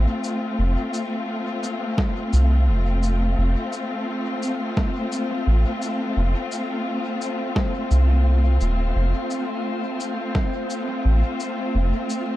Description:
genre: ambient dub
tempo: 86 BPM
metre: 4/4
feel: swing 58% on 16ths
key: F major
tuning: A4 = 441 Hz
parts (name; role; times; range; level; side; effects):
- warm studio string section; sustained chords; 0.0-12.4 s; A3 to F4; -26 LUFS; left 2 dB; none
- soft dub sub bass; bass; 0.0-11.9 s; Eb1 to C2; -18 LUFS; equal; tube saturation
- electronic cabasa and snare drum; drums; 0.2-12.3 s; none; -30 LUFS; equal; dub echo
- electronic kick drum; drums; 2.0-10.5 s; none; -24 LUFS; equal; none
- drifting glass-harmonics texture; texture; 3.9-12.4 s; C4 to C5; -32 LUFS; right 1 dB; chorus, built-in reverb
room: light reverb, digital ambience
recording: none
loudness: -20 LUFS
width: side -15 dB against mid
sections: 0.0-12.4 A section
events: kick drops out 11.7-12.4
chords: 0.0 F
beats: | 0.58 1.28 1.98 2.68 | 3.38 4.07 4.77 5.47 | 6.17 6.86 7.56 8.26 | 8.96 9.65 10.35 11.05 | 11.75

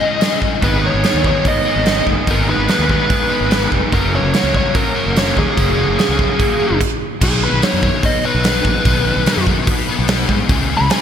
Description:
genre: indie rock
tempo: 146 BPM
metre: 4/4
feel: straight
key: B major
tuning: A4 = 436 Hz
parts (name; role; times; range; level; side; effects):
- dark smooth lead guitar; melody; 0.0-11.0 s; G#4 to B5; -19 LUFS; equal; overdrive, digital delay
- crunchy overdriven guitar; riff; 0.0-11.0 s; F#2 to B4; -20 LUFS; left 5 dB; ensemble chorus
- big rock drum kit; drums; 0.2-11.0 s; crash cymbal, hi-hat, kick drum, snare drum; -18 LUFS; right 1 dB; gated reverb
- fuzz guitar; riff; 0.6-6.8 s; D#3 to D#4; -22 LUFS; right 6 dB; distortion, ensemble chorus, digital delay
- fuzz fingered electric bass; bass; 0.6-10.9 s; E#1 to G#2; -20 LUFS; equal; overdrive
room: moderate lush hall reverb, RT60 2.0 s, small room reverb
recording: bright 1980s-style digital production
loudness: -13 LUFS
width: side -8 dB against mid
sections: 0.0-7.2 A section; 7.2-11.0 B section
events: stop 6.8-7.2; lead electric guitar solo 7.2-11.0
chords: 0.0 C#madd9; 0.6 G#m; 3.9 F#add9; 7.2 B; 10.5 C#m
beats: 0.22 | 0.63 1.04 1.46 1.87 | 2.28 2.69 3.10 3.51 | 3.92 4.34 4.75 5.16 | 5.57 5.98 6.39 6.80 | 7.21 7.62 8.04 8.45 | 8.86 9.27 9.68 10.09 | 10.50 10.91

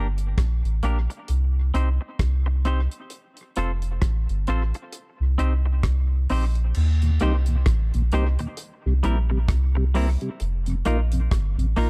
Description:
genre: roots reggae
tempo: 66 BPM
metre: 4/4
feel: swing 58% on 16ths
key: unclear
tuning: A4 = 439 Hz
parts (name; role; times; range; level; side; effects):
- semi-hollow electric guitar; accompaniment; 0.0-11.9 s; G3 to C5; -32 LUFS; equal; tape echo
- soft dub sub bass; bass; 0.0-11.9 s; F1 to Eb2; -24 LUFS; equal; none
- damped 70s drum kit; drums; 0.2-11.9 s; crash cymbal, hi-hat, kick drum, rim click; -28 LUFS; equal; none
- mellow tonewheel organ; accompaniment; 7.0-11.9 s; Eb2 to F4; -32 LUFS; equal; overdrive, slow rotary speaker
room: small room ambience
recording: dark, warm production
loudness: -23 LUFS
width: mono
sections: 0.0-6.8 A section; 6.8-11.9 B section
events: none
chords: 0.0 Gm; 1.3 Cm; 3.1 F; 4.9 Cm; 6.8 Eb6; 8.6 C7; 10.4 F7sus4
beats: 0.37 1.28 2.19 | 3.11 4.02 4.93 5.84 | 6.75 7.66 8.57 9.48 | 10.40 11.31

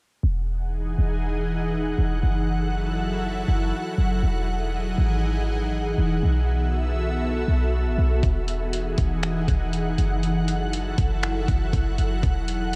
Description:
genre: hip hop, atmospheric cloud-rap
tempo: 120 BPM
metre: 4/4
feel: half-time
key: E major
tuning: A4 = 440 Hz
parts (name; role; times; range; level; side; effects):
- ethereal airy pad; sustained chords; 0.6-12.8 s; E3 to F#5; -29 LUFS; equal; ensemble chorus, built-in reverb
- clean 808-style bass; bass; 0.2-12.8 s; E1 to B1; -26 LUFS; equal; none
- trip hop sampler-style drum kit; drums; 8.2-12.8 s; finger snaps, hi-hat, kick drum; -28 LUFS; equal; none
room: little or no reverb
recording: none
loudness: -24 LUFS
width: mono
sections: 0.2-12.8 A section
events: none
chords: 0.2 Emaj9; 2.2 F#m7; 4.2 Emaj9; 6.2 B7sus4; 8.2 Emaj9; 10.2 F#m7; 12.2 Emaj9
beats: | 0.23 0.73 1.23 1.73 | 2.23 2.73 3.23 3.73 | 4.23 4.73 5.23 5.73 | 6.23 6.73 7.23 7.73 | 8.23 8.73 9.23 9.73 | 10.23 10.73 11.23 11.73 | 12.23 12.73

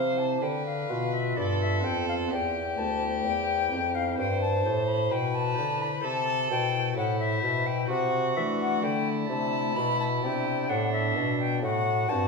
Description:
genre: classical, baroque-style sonata movement with continuo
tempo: 64 BPM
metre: 4/4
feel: rubato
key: C major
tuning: A4 = 438 Hz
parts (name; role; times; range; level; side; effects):
- silver concert flute; melody; 0.0-12.3 s; D5 to B5; -30 LUFS; left 7 dB; none
- warm violin; second line; 0.0-12.3 s; D4 to C5; -31 LUFS; right 3 dB; none
- chamber organ, stopped flute; accompaniment; 0.0-12.3 s; D2 to D5; -30 LUFS; left 1 dB; none
- clear bassoon; bass; 0.0-12.3 s; D2 to E3; -32 LUFS; equal; none
room: wet recital hall reverb, RT60 1.4 s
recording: studio ambience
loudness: -25 LUFS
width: side -3 dB against mid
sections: 0.0-12.3 A section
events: none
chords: 0.4 Bdim; 2.3 C; 6.0 Am; 7.9 D7/C; 9.8 Am11; 11.6 F#dim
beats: 0.42 1.37 | 2.31 3.25 4.19 5.12 | 6.04 6.97 7.90 8.83 | 9.76 10.70 11.62

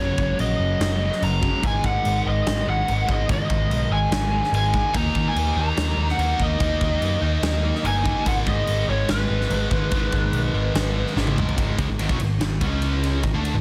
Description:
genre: hard rock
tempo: 145 BPM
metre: 4/4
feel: straight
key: G# minor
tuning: A4 = 438 Hz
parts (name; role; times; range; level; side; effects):
- lead guitar through a small cranked amp; melody; 0.0-11.1 s; B4 to A#5; -28 LUFS; equal; overdrive, slapback echo
- distorted electric guitar; riff; 0.0-13.6 s; F#2 to D#4; -34 LUFS; equal; overdrive
- overdriven semi-hollow guitar; riff; 0.0-13.6 s; F#2 to D#4; -32 LUFS; equal; none
- overdriven picked electric bass; bass; 0.0-13.6 s; F#1 to D#3; -27 LUFS; equal; none
- huge arena drum kit; drums; 0.2-13.5 s; crash cymbal, kick drum, ride cymbal, snare drum, toms; -29 LUFS; equal; none
- high-gain distorted guitar; riff; 4.9-13.6 s; G#2 to D#4; -31 LUFS; equal; distortion
room: small room ambience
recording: dense, heavily limited modern master, vinyl crackle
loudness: -22 LUFS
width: mono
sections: 0.0-11.6 A section; 11.6-13.6 B section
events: drum fill 11.2-11.6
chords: 0.0 F#; 1.6 G#5; 4.9 D#5; 8.3 G#m; 12.6 C#5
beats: 0.38 0.80 1.21 | 1.63 2.04 2.46 2.87 | 3.29 3.70 4.12 4.53 | 4.94 5.36 5.77 6.19 | 6.60 7.02 7.43 7.84 | 8.26 8.67 9.09 9.50 | 9.92 10.33 10.75 11.16 | 11.58 11.99 12.41 12.82 | 13.24

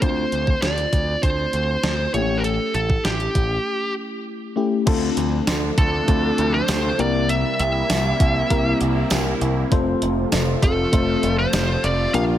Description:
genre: 1980s-style pop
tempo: 99 BPM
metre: 4/4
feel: straight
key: D minor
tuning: A4 = 442 Hz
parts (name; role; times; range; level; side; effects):
- fuzz lead guitar; melody; 0.0-12.2 s; G4 to F5; -23 LUFS; right 1 dB; distortion, ping-pong delay
- mellow FM electric piano; accompaniment; 0.0-12.4 s; A3 to C5; -24 LUFS; left 3 dB; chorus
- overdriven picked electric bass; bass; 0.0-12.4 s; F1 to D2; -24 LUFS; equal; none
- clean 12-bit digital drum machine; drums; 0.0-12.3 s; crash cymbal, hi-hat, kick drum, snare drum, tambourine; -22 LUFS; equal; gated reverb
- sweeping resonant pad; sustained chords; 4.9-12.4 s; C3 to F4; -28 LUFS; right 2 dB; chorus
- tambourine; percussion; 5.5-11.7 s; none; -37 LUFS; right 8 dB; none
room: light reverb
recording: none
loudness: -18 LUFS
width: side -11 dB against mid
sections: 0.0-4.9 A section; 4.9-12.4 B section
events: break 3.7-4.9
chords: 0.0 Dm7; 2.1 A7; 4.9 Dm7; 7.0 C7; 9.7 F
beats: | 0.02 0.63 1.23 1.84 | 2.44 3.05 3.66 4.26 | 4.87 5.47 6.08 6.69 | 7.29 7.90 8.51 9.11 | 9.72 10.32 10.93 11.54 | 12.14

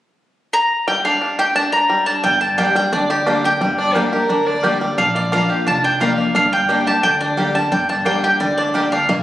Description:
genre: bluegrass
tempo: 175 BPM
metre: 4/4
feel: straight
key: G minor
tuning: A4 = 440 Hz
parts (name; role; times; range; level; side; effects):
- mandolin; melody; 0.5-9.2 s; D5 to Bb5; -17 LUFS; equal; none
- bluegrass banjo; arpeggios; 0.9-9.2 s; G3 to G4; -22 LUFS; right 1 dB; none
- picked steel-string acoustic guitar; accompaniment; 2.2-9.2 s; F2 to G4; -22 LUFS; left 2 dB; none
- upright bass; bass; 2.2-9.2 s; F1 to D2; -26 LUFS; equal; none
- mandolin; stabs; 2.6-8.8 s; Bb3 to Bb5; -24 LUFS; right 2 dB; none
- dark fiddle; second line; 3.8-4.9 s; Bb4 to D5; -20 LUFS; left 1 dB; none
room: wet large studio reverb, RT60 1.4 s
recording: recorded on a phone in the room, club reverb, compression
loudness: -14 LUFS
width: side -14 dB against mid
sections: 0.9-2.2 A section; 2.2-9.2 B section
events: none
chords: 0.0 N.C.; 0.9 Gm; 5.0 Bb; 6.3 Gm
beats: 0.19 0.53 | 0.88 1.22 1.56 1.90 | 2.24 2.59 2.93 3.27 | 3.61 3.95 4.30 4.64 | 4.98 5.32 5.67 6.01 | 6.35 6.69 7.03 7.38 | 7.72 8.06 8.40 8.75 | 9.09

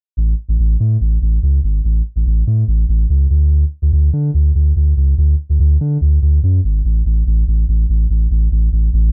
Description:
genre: indie pop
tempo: 144 BPM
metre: 4/4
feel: straight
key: A major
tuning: A4 = 439 Hz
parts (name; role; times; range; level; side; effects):
- sub bass with octave; bass; 0.2-9.1 s; G#1 to D3; -15 LUFS; equal; none
room: little or no reverb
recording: dark, warm production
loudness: -15 LUFS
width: mono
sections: 0.2-6.8 A section; 6.8-9.1 B section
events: none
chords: none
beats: | 0.17 0.59 1.01 1.42 | 1.84 2.26 2.68 3.09 | 3.51 3.93 4.35 4.76 | 5.18 5.60 6.01 6.43 | 6.85 7.27 7.68 8.10 | 8.52 8.93

